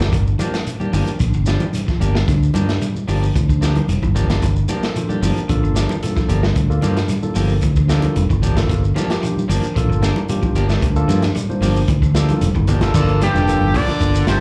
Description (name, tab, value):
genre	afrobeat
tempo	112 BPM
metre	4/4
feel	straight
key	G dorian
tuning	A4 = 440 Hz
part	electric guitar at the edge of break-up	arpeggios	0.0-14.3 s	D3 to G3	-28 LUFS	equal	slapback echo
part	electric guitar at the edge of break-up	stabs	0.0-14.4 s	F3 to A4	-28 LUFS	equal	plate reverb, slapback echo
part	fingered electric bass	bass	0.0-14.4 s	F1 to G2	-20 LUFS	equal	none
part	crunchy breakbeat drum kit	drums	0.0-14.4 s	crash cymbal, hi-hat, kick drum, snare drum	-25 LUFS	equal	none
part	shekere	percussion	0.0-14.4 s	none	-32 LUFS	equal	none
part	congas	percussion	0.1-14.4 s	none	-28 LUFS	equal	none
part	barky tine electric piano	accompaniment	4.8-14.3 s	Bb3 to C5	-27 LUFS	equal	slapback echo
part	warm trumpet	melody	13.2-14.4 s	G4 to D5	-23 LUFS	equal	slapback echo
part	growling baritone saxophone	second line	13.2-14.4 s	G2 to D3	-25 LUFS	equal	slapback echo
room	light reverb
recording	live gig heard through the venue's PA, club reverb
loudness	-18 LUFS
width	mono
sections	0.0-12.9 A section; 12.9-14.4 B section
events	drum fill 12.4-12.9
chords	0.0 Gm9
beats	| 0.13 0.67 1.20 1.74 | 2.28 2.82 3.35 3.89 | 4.43 4.96 5.50 6.03 | 6.57 7.10 7.64 8.17 | 8.70 9.23 9.77 10.30 | 10.83 11.36 11.89 12.42 | 12.95 13.48 14.01